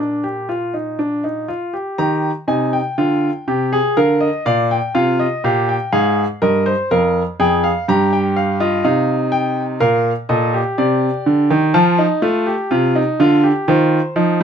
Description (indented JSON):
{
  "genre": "classical, baroque-style 3-part fugue for grand piano",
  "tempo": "62 BPM",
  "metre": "4/4",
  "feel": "straight",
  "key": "Eb major",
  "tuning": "A4 = 439 Hz",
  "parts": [
    { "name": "clear baby grand piano", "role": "solo", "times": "0.0-14.4 s", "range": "F2 to Bb5", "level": "-14 LUFS", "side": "equal", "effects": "none" }
  ],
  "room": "light reverb",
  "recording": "close, detailed microphones",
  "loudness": "-14 LUFS",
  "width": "side -7 dB against mid",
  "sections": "0.0-2.0 A section; 2.0-14.4 B section",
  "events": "none",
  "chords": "0.0 Bb; 2.0 Eb; 4.0 Bb; 5.9 Bb5; 7.9 Eb/G; 9.8 Bb; 11.7 F; 13.7 F5/Eb"
}